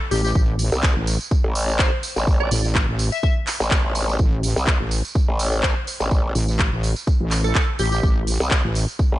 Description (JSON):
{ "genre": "bass house", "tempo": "125 BPM", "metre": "4/4", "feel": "swing 54% on 16ths", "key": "A minor", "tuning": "A4 = 440 Hz", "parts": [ { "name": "glassy wavetable pluck", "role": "melody", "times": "0.1-8.0 s", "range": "G4 to E5", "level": "-28 LUFS", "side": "left 1 dB", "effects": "chorus, ping-pong delay" }, { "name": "wobble bass", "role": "bass", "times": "0.1-8.9 s", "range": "A1", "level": "-21 LUFS", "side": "equal", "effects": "chorus, sidechain pumping" }, { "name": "house drum kit", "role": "drums", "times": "0.1-8.9 s", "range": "handclaps, hi-hat", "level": "-26 LUFS", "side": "equal", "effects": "studio reverb" }, { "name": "tambourine", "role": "percussion", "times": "0.1-9.1 s", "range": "none", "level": "-32 LUFS", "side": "right 5 dB", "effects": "none" }, { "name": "electronic kick drum", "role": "drums", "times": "0.4-9.1 s", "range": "none", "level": "-20 LUFS", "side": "equal", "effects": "studio reverb" }, { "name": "growl bass", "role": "bass", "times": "0.7-9.2 s", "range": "A1 to C2", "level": "-21 LUFS", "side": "equal", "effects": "chorus, overdrive, sidechain pumping" } ], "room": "little or no reverb", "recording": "nothing above 10.4 kHz", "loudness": "-18 LUFS", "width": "side -15 dB against mid", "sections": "0.0-9.2 A section", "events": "none", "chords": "none" }